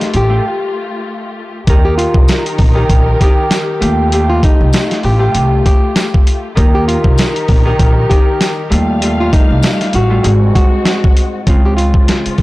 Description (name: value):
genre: hip hop, boom-bap hip-hop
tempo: 98 BPM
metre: 4/4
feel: swing 57% on 16ths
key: unclear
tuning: A4 = 440 Hz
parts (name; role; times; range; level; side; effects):
- nylon-string guitar; melody; 0.0-12.2 s; Eb4 to G4; -19 LUFS; equal; high-pass filter, low-pass filter
- Celtic harp; accompaniment; 0.0-12.4 s; Ab2 to Bb4; -17 LUFS; equal; high-pass filter, low-pass filter
- warm studio string section; sustained chords; 0.0-12.4 s; Eb3 to F5; -24 LUFS; left 2 dB; high-pass filter, low-pass filter
- boom bap sampler-style drum kit; drums; 0.0-12.4 s; hi-hat, kick drum, snare drum; -11 LUFS; equal; none
- upright bass; bass; 0.1-12.4 s; Ab1 to Eb2; -14 LUFS; equal; tube saturation
- tambourine; percussion; 2.3-11.0 s; none; -32 LUFS; left 4 dB; none
room: small room reverb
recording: blown-out, overdriven recording, overdrive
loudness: -9 LUFS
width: side -19 dB against mid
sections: 0.0-11.5 A section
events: break 0.5-1.7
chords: 0.0 Fadd9; 1.7 Eb; 3.8 Fadd9; 6.6 Eb; 8.7 Fadd9/Eb; 10.2 Ab7; 11.5 Dbmaj7